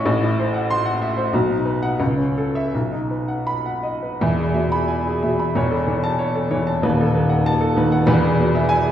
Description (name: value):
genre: classical, romantic character piece for solo piano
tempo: 78-98 BPM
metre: 2/4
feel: rubato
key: E major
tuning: A4 = 440 Hz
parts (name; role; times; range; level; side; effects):
- warm upright piano; solo; 0.0-8.9 s; D#1 to C6; -17 LUFS; equal; none
room: wet recital hall reverb, RT60 1.4 s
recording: heard from further back in the room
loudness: -17 LUFS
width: side -10 dB against mid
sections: 0.0-4.2 A section; 4.2-8.9 B section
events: none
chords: 0.1 F#m7b5/A; 1.3 B; 2.0 A/C#; 2.7 B; 4.2 E; 5.6 A/E; 6.8 B7/D#; 8.1 E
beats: | 0.06 0.69 | 1.33 2.00 | 2.72 3.47 | 4.22 4.90 | 5.55 6.19 | 6.84 7.47 | 8.09 8.72